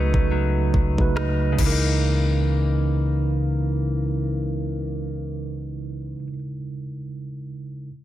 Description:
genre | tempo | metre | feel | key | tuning
contemporary R&B | 71 BPM | 4/4 | swing 58% on 16ths | C# dorian | A4 = 439 Hz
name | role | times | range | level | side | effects
mellow tine electric piano | accompaniment | 0.0-7.9 s | C#3 to B4 | -25 LUFS | right 2 dB | slow stereo tremolo
direct-recorded clean electric guitar | arpeggios | 0.0-6.4 s | C#3 to D#4 | -28 LUFS | left 5 dB | ping-pong delay
soft 808-style bass | bass | 0.0-6.1 s | C#2 | -26 LUFS | equal | none
smooth R&B drum kit | drums | 0.1-1.8 s | crash cymbal, kick drum, rim click | -24 LUFS | equal | soft clipping on snare
room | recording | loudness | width
light reverb | dense, heavily limited modern master | -21 LUFS | side -13 dB against mid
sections
0.0-2.0 A section; 2.0-5.4 B section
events
none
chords
0.0 B9/C#; 1.6 C#m69

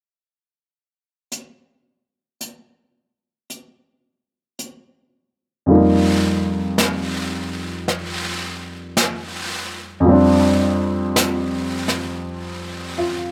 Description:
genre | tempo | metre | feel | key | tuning
jazz ballad | 55 BPM | 4/4 | swing 69% on 8ths | unclear | A4 = 440 Hz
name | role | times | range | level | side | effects
jazz brush drum kit | drums | 1.3-13.3 s | brushed snare drum, hi-hat, snare drum | -26 LUFS | equal | none
warm baby grand piano | accompaniment | 5.7-13.3 s | F2 to F4 | -20 LUFS | equal | none
room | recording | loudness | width
little or no reverb | close, detailed microphones | -19 LUFS | mono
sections
1.3-5.7 A section; 5.7-13.3 B section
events
none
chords
1.3 N.C.; 5.7 F7sus4; 10.1 Bb69/F (rootless)

